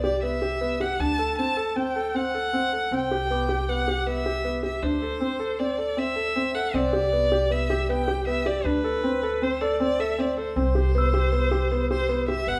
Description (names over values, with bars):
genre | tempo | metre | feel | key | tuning
contemporary instrumental, chamber music in an uneven meter | 157 BPM | 5/4 | straight | C lydian | A4 = 440 Hz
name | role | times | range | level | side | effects
rich violin | melody | 0.0-12.6 s | B4 to A5 | -29 LUFS | equal | none
felt-muted upright piano | arpeggios | 0.0-12.6 s | B3 to A4 | -29 LUFS | equal | none
upright bass | bass | 0.0-12.6 s | G1 to D2 | -32 LUFS | equal | none
glockenspiel with rubber mallets | texture | 3.3-4.2, 11.0-11.8 s | D6 to E6 | -38 LUFS | equal | none
room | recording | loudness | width
moderate recital hall reverb, RT60 1.7 s | none | -25 LUFS | mono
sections
0.0-12.5 A section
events
none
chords
0.0 Cmaj7; 1.0 D7; 2.9 Cmaj7; 4.8 D5; 6.7 Cmaj7; 8.7 D5; 10.6 Cmaj7